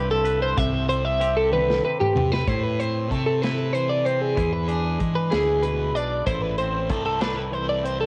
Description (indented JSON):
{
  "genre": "math rock and midwest emo",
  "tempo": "63 BPM (dotted quarters)",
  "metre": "6/8",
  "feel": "straight",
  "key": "unclear",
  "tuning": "A4 = 441 Hz",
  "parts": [
    { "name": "twangy electric guitar", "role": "accompaniment", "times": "0.0-8.1 s", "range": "G2 to B4", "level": "-34 LUFS", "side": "equal", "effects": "none" },
    { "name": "twelve-string electric guitar", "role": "arpeggios", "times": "0.0-8.1 s", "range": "G4 to E5", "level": "-26 LUFS", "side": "equal", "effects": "tape echo" },
    { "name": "fuzz fingered electric bass", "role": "bass", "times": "0.0-8.1 s", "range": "A1 to E3", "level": "-29 LUFS", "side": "equal", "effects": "overdrive" },
    { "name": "modern studio drum kit", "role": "drums", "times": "0.3-8.0 s", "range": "hi-hat, kick drum, snare drum, toms", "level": "-32 LUFS", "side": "equal", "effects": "vintage 12-bit sampler grit, cassette tape" }
  ],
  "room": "moderate spring reverb, RT60 2.1 s",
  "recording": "home recording on cassette",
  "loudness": "-23 LUFS",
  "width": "mono",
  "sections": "0.0-2.5 A section; 2.5-8.1 B section",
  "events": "drum fill 1.5-2.5",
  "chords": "0.0 Cmaj9; 2.5 Amadd9; 4.4 E7; 6.3 Amadd9",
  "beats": "| 0.57 1.52 | 2.47 3.42 | 4.37 5.32 | 6.27 7.22"
}